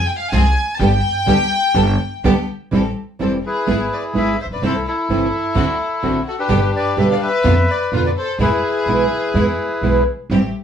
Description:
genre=tango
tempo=126 BPM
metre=4/4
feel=rubato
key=unclear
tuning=A4 = 441 Hz
part: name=warm studio violin section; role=second line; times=0.0-10.0 s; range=E4 to A5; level=-22 LUFS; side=left 2 dB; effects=none
part: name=bright studio string section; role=stabs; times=0.0-10.5 s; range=G#3 to A4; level=-29 LUFS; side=left 1 dB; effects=none
part: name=upright bass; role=bass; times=0.0-10.5 s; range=E1 to F2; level=-21 LUFS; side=equal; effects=none
part: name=nylon-string guitar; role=accompaniment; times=0.3-10.4 s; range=B2 to G4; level=-18 LUFS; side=right 2 dB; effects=none
part: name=bandoneon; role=melody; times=3.2-10.0 s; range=D4 to F5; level=-20 LUFS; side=left 2 dB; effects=none
room=wet studio ambience, RT60 0.5 s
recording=band playing live in one room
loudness=-15 LUFS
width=side -8 dB against mid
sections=0.0-2.7 A section; 2.7-10.6 B section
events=violin section solo 0.0-2.7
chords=0.0 Fm; 0.8 Gadd9; 2.7 Am7; 3.7 E/G#; 4.6 C6; 5.6 D7; 6.5 G; 7.4 Bdim/F; 8.4 E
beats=0.32 | 0.80 1.27 1.75 2.24 | 2.72 3.20 3.68 4.16 | 4.63 5.10 5.56 6.03 | 6.49 6.97 7.44 7.91 | 8.39 8.86 9.34 9.82 | 10.30

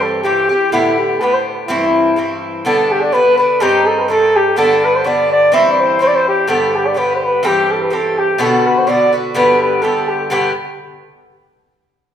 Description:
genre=celtic folk, Celtic polka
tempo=125 BPM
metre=2/4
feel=swing 54% on 8ths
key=G major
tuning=A4 = 440 Hz
part: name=mellow flugelhorn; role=melody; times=0.0-10.6 s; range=E4 to E5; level=-13 LUFS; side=equal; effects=none
part: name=Irish bouzouki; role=accompaniment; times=0.0-10.5 s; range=G2 to G4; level=-16 LUFS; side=left 1 dB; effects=none
room=wet recital hall reverb, RT60 1.6 s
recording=minimal, uncompressed stereo recording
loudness=-12 LUFS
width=side -9 dB against mid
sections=0.0-2.6 A section; 2.6-10.3 B section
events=none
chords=0.0 C; 0.7 Gadd9; 1.7 C; 2.6 G; 3.6 Cm; 4.6 G; 5.5 C; 6.5 G; 7.4 C; 8.4 Bm; 9.4 G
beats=0.24 | 0.72 1.21 | 1.69 2.17 | 2.65 3.13 | 3.61 4.09 | 4.57 5.05 | 5.53 6.01 | 6.49 6.96 | 7.44 7.92 | 8.40 8.88 | 9.36 9.84 | 10.31

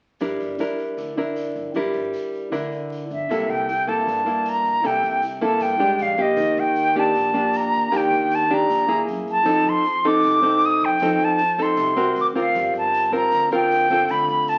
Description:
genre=bossa nova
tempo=156 BPM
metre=4/4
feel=straight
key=G dorian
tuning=A4 = 440 Hz
part: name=nylon-string guitar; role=accompaniment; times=0.2-14.6 s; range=G2 to Bb4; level=-25 LUFS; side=equal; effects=none
part: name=upright bass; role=bass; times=0.2-14.6 s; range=G1 to G2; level=-43 LUFS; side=equal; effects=none
part: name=egg shaker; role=percussion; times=0.2-14.6 s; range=none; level=-52 LUFS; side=equal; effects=none
part: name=silver concert flute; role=melody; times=3.1-14.6 s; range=Eb5 to Eb6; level=-22 LUFS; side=equal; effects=none
room=moderate large studio reverb, RT60 0.9 s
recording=very old 78 rpm record, vinyl crackle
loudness=-21 LUFS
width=mono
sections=0.2-3.3 A section; 3.3-14.6 B section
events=none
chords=0.2 Gm6; 3.3 C13; 6.0 Bb6; 6.4 Ebmaj7; 9.1 F#9; 9.5 F7; 12.2 D7alt; 12.5 Gm11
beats=| 0.21 0.60 0.98 1.37 | 1.75 2.14 2.52 2.91 | 3.29 3.68 4.07 4.45 | 4.83 5.22 5.61 5.99 | 6.38 6.76 7.15 7.53 | 7.92 8.30 8.69 9.07 | 9.46 9.85 10.23 10.62 | 11.00 11.39 11.77 12.16 | 12.55 12.93 13.32 13.70 | 14.09 14.47

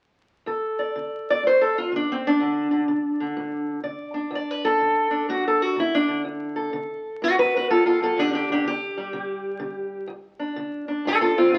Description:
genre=acoustic country blues, solo or duo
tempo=125 BPM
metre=4/4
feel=swing 65% on 8ths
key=unclear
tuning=A4 = 440 Hz
part: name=fingerpicked steel-string acoustic guitar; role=solo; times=0.5-11.6 s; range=D2 to D5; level=-24 LUFS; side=equal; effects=none
room=moderate club reverb, RT60 0.8 s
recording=very old 78 rpm record, vinyl crackle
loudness=-24 LUFS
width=mono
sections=0.5-11.6 A section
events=steel-string acoustic guitar solo 0.5-11.6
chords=0.5 D5; 8.2 G5; 10.1 D5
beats=| 0.47 0.96 1.44 1.92 | 2.41 2.89 3.37 3.85 | 4.34 4.82 5.30 5.78 | 6.26 6.74 7.22 7.70 | 8.18 8.66 9.14 9.62 | 10.10 10.58 11.06 11.54

